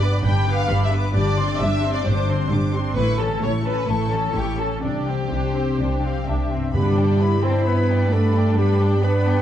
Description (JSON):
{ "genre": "cinematic", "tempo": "130 BPM", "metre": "4/4", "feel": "straight", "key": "G major", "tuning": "A4 = 443 Hz", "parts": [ { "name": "rich symphonic violin section", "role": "melody", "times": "0.0-9.4 s", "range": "C5 to D6", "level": "-32 LUFS", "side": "left 2 dB", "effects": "none" }, { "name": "warm symphonic violin section", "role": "second line", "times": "0.0-9.4 s", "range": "B3 to G5", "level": "-27 LUFS", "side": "left 2 dB", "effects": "none" }, { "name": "rich symphonic viola section", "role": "accompaniment", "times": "0.0-9.4 s", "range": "A3 to B4", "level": "-27 LUFS", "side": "equal", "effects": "none" }, { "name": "concert harp", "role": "arpeggios", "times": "0.0-9.4 s", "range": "G2 to D5", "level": "-28 LUFS", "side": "left 5 dB", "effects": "none" }, { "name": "rich symphonic cello section", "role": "bass", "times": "0.0-9.4 s", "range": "G2 to C4", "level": "-26 LUFS", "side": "right 1 dB", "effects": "none" }, { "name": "warm studio double bass section", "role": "bass", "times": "0.0-9.4 s", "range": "G1 to G2", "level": "-22 LUFS", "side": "right 2 dB", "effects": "none" }, { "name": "warm clarinet", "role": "second line", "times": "6.7-9.4 s", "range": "G4 to C5", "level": "-23 LUFS", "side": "left 2 dB", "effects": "none" }, { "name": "timpani", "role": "percussion", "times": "6.7-7.4 s", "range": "G2", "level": "-24 LUFS", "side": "right 2 dB", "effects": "none" } ], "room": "wet recital hall reverb, RT60 1.3 s", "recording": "dark, warm production", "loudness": "-18 LUFS", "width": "side -10 dB against mid", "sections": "0.0-6.7 A section; 6.7-9.4 A section", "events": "none", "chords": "0.0 G; 1.2 Csus2/G; 3.0 A; 4.8 Csus2; 6.7 G" }